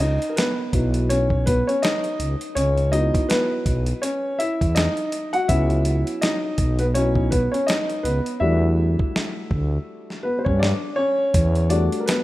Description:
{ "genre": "hip hop, jazz-hop", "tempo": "82 BPM", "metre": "4/4", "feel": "swing 58% on 16ths", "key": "C# minor", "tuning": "A4 = 439 Hz", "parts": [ { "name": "dark upright piano", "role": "accompaniment", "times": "0.0-12.2 s", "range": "F#3 to F#5", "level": "-22 LUFS", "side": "left 1 dB", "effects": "none" }, { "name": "growling FM bass", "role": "bass", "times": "0.0-11.9 s", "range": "B1 to G2", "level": "-21 LUFS", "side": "equal", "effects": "none" }, { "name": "dusty soul sampler-style drum kit", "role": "drums", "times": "0.0-12.2 s", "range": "hi-hat, kick drum, snare drum", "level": "-25 LUFS", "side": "equal", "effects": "overdrive" } ], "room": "light reverb", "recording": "rough home demo mix", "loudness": "-19 LUFS", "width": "side -16 dB against mid", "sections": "0.0-12.2 A section", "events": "upright piano solo 0.0-12.2; hi-hats muted 8.4-11.3", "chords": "0.0 C#m11; 8.4 Em11" }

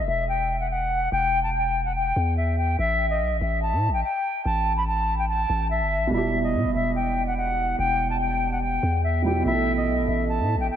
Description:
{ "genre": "hip hop, drill", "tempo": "144 BPM", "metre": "4/4", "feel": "half-time", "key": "E harmonic minor", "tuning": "A4 = 440 Hz", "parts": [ { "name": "reedy silver concert flute", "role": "melody", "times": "0.0-10.8 s", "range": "D#5 to B5", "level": "-24 LUFS", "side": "left 1 dB", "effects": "low-pass filter, analog delay" }, { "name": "long sustained 808-style bass", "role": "bass", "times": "0.0-10.7 s", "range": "E1 to B2", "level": "-26 LUFS", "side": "equal", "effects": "none" }, { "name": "felt-muted upright piano", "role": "accompaniment", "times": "6.1-10.8 s", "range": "B2 to A4", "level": "-27 LUFS", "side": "right 5 dB", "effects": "low-pass filter" } ], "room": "moderate lush hall reverb, RT60 2.6 s", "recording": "dreamy mix soaked in reverb", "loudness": "-21 LUFS", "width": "side -9 dB against mid", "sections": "0.0-10.8 A section", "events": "none", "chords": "0.0 Emadd9; 2.8 A5; 6.1 Em; 9.5 Asus2" }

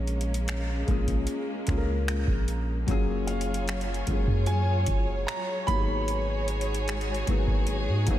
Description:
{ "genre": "contemporary R&B", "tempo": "75 BPM", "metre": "4/4", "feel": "straight", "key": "F# major", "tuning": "A4 = 440 Hz", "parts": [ { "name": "warm baby grand piano", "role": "melody", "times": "0.0-8.0 s", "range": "C#5 to B5", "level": "-35 LUFS", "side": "right 2 dB", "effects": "analog chorus, tape echo" }, { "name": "warm studio string section", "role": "sustained chords", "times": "0.0-8.2 s", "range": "F#3 to C#5", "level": "-33 LUFS", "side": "equal", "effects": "sidechain pumping" }, { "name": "long sustained 808-style bass", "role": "bass", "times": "0.0-8.2 s", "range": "F#1 to G#2", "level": "-28 LUFS", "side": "equal", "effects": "none" }, { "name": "booming analog drum machine", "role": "drums", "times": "0.1-8.2 s", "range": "finger snaps, hi-hat, kick drum", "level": "-29 LUFS", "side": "equal", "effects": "none" }, { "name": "felt-muted upright piano", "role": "accompaniment", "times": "0.9-8.2 s", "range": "F#3 to A#4", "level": "-33 LUFS", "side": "left 4 dB", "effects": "analog chorus" } ], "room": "moderate lush hall reverb, RT60 2.6 s", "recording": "dreamy mix soaked in reverb", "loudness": "-25 LUFS", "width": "side -12 dB against mid", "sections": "0.0-8.2 A section", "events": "none", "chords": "0.0 A#m7; 2.9 F#maj9; 5.7 G#m9" }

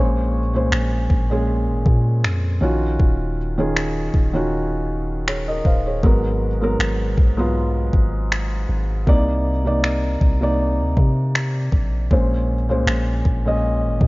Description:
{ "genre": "contemporary R&B", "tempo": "79 BPM", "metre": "4/4", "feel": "swing 54% on 16ths", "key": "unclear", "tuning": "A4 = 440 Hz", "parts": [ { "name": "felt-muted upright piano", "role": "accompaniment", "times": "0.0-14.1 s", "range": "Ab2 to Db6", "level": "-22 LUFS", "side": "equal", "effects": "none" }, { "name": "long sustained 808-style bass", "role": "bass", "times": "0.0-14.1 s", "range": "Eb1 to C3", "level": "-22 LUFS", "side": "equal", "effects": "none" }, { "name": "smooth R&B drum kit", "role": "drums", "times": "0.7-14.1 s", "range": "finger snaps, kick drum", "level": "-19 LUFS", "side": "equal", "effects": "none" } ], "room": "digital ambience", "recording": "worn, warbling old tape, cassette tape, warbly pitch drift, nothing above 7.5 kHz", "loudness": "-17 LUFS", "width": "side -22 dB against mid", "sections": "0.0-14.1 A section", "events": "none", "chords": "0.0 Bbm9; 2.6 Ebm9; 6.0 Abm9; 9.1 Cm9; 12.1 Bbm9" }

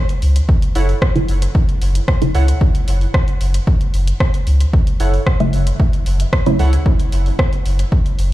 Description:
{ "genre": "dub techno", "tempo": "113 BPM", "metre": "4/4", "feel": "straight", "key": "F# minor", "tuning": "A4 = 438 Hz", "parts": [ { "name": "deep house drum kit", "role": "drums", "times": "0.1-8.3 s", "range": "hi-hat, rim click", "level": "-26 LUFS", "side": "equal", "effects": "overdrive, dub echo" }, { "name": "warm sub bass", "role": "bass", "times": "0.2-8.3 s", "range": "F#1 to C#2", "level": "-14 LUFS", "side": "equal", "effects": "sidechain pumping" }, { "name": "electronic kick drum", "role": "drums", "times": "0.5-8.0 s", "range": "none", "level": "-15 LUFS", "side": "equal", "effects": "overdrive" }, { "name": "warbly lo-fi synth keys", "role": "riff", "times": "0.8-6.7 s", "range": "E4 to F#5", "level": "-27 LUFS", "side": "right 3 dB", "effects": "chorus, sidechain pumping, dub echo" }, { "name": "filtered dub chord stab", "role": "stabs", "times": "1.2-6.6 s", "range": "C#3 to E4", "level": "-22 LUFS", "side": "right 1 dB", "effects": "phaser, sidechain pumping, dub echo" } ], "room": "digital ambience", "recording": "played on a big sound system in a bare room, stone room reverb", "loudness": "-13 LUFS", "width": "side -16 dB against mid", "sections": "0.0-8.3 A section", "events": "filter sweep on synth stab 0.0-8.3", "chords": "0.0 F#m7" }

